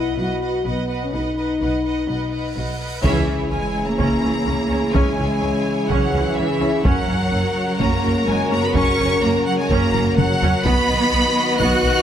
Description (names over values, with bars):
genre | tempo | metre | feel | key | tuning
cinematic, epic orchestral film score | 126 BPM | 4/4 | straight | C# dorian from 3.0 s | A4 = 440 Hz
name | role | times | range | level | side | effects
rich symphonic violin section | melody | 0.0-12.0 s | E5 to F#6 | -25 LUFS | left 1 dB | none
rich studio violin section | second line | 0.0-12.0 s | G#4 to D#5 | -28 LUFS | equal | none
warm studio viola section | accompaniment | 0.0-12.0 s | B3 to B4 | -27 LUFS | equal | none
dark French horn section | sustained chords | 0.0-12.0 s | B3 to B4 | -24 LUFS | left 3 dB | none
rich symphonic double bass section | bass | 0.0-11.9 s | F#1 to C#2 | -25 LUFS | right 1 dB | none
warm symphonic cello section | bass | 0.0-12.0 s | B2 to F#4 | -24 LUFS | right 2 dB | none
cymbal swell and sub drop | sound effects | 2.3-4.9 s | none | -33 LUFS | equal | none
clear trombone section | sustained chords | 3.0-12.0 s | C#3 to F#3 | -27 LUFS | right 2 dB | none
taiko ensemble | drums | 3.0-12.0 s | none | -23 LUFS | equal | none
timpani | percussion | 3.0-3.7 s | C#3 | -31 LUFS | left 1 dB | none
room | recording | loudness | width
moderate recital hall reverb, RT60 1.6 s | none | -17 LUFS | side -9 dB against mid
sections
0.0-3.0 A section; 3.0-12.0 B section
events
cymbal swell 2.3-3.0; band accent 3.0-3.5; impact 3.0-4.9; drum fill 9.9-10.7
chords
0.0 B; 3.0 C#m; 6.8 F#; 10.7 B